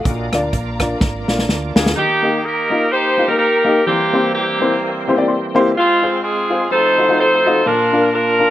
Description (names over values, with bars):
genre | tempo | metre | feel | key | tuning
uptempo gospel | 126 BPM | 4/4 | swing 57% on 8ths | Eb major | A4 = 439 Hz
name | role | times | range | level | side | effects
bright tonewheel organ | sustained chords | 0.0-8.5 s | D3 to Eb5 | -25 LUFS | right 2 dB | slow rotary speaker, overdrive, chorus vibrato
warm studio string section | sustained chords | 0.0-1.9 s | Bb4 to Bb5 | -33 LUFS | right 1 dB | none
warm baby grand piano | accompaniment | 0.1-8.5 s | Bb2 to C6 | -18 LUFS | left 2 dB | none
deep dub fingered electric bass | bass | 0.1-1.9 s | Ab1 to D2 | -25 LUFS | right 1 dB | none
natural country drum kit | drums | 0.1-2.0 s | hi-hat, kick drum, rim click, snare drum | -17 LUFS | equal | none
edgy saxophone section | melody | 2.0-8.5 s | Ab3 to C5 | -14 LUFS | equal | slapback echo
room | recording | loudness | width
little or no reverb | recorded outdoors, with no room sound | -13 LUFS | side -13 dB against mid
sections
0.0-2.0 A section; 2.0-8.5 B section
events
drum fill 1.0-2.0; grand piano fill 5.0-5.8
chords
0.1 Bb; 2.0 Eb; 3.9 C7/E; 5.8 Fm; 6.7 F7b9; 7.7 Bb